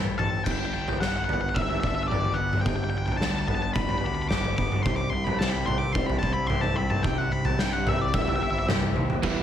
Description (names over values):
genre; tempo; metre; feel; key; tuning
post-rock; 109 BPM; 4/4; straight; unclear; A4 = 439 Hz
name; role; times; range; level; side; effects
hand-pumped harmonium; sustained chords; 0.0-0.4, 4.8-9.4 s; C3 to F#5; -37 LUFS; left 2 dB; none
twangy electric guitar; arpeggios; 0.0-9.4 s; G2 to A4; -35 LUFS; left 6 dB; phaser, plate reverb, tape echo
fuzz picked electric bass; bass; 0.0-9.4 s; E1 to G2; -31 LUFS; equal; overdrive
octave-fuzz lead guitar; melody; 0.2-8.7 s; D5 to D6; -30 LUFS; left 2 dB; distortion, plate reverb, tape echo
oversized low-tuned drum kit; drums; 0.2-9.4 s; crash cymbal, kick drum, snare drum, toms; -26 LUFS; equal; none
crunchy overdriven guitar; riff; 9.2-9.4 s; E3 to E4; -26 LUFS; right 6 dB; none
room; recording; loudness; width
light reverb, small room ambience; none; -23 LUFS; side -10 dB against mid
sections
0.5-9.2 A section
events
drum fill 9.0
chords
0.5 G; 4.9 C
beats
| 0.46 1.01 1.56 2.11 | 2.65 3.21 3.75 4.30 | 4.85 5.40 5.95 6.50 | 7.04 7.59 8.14 8.69 | 9.24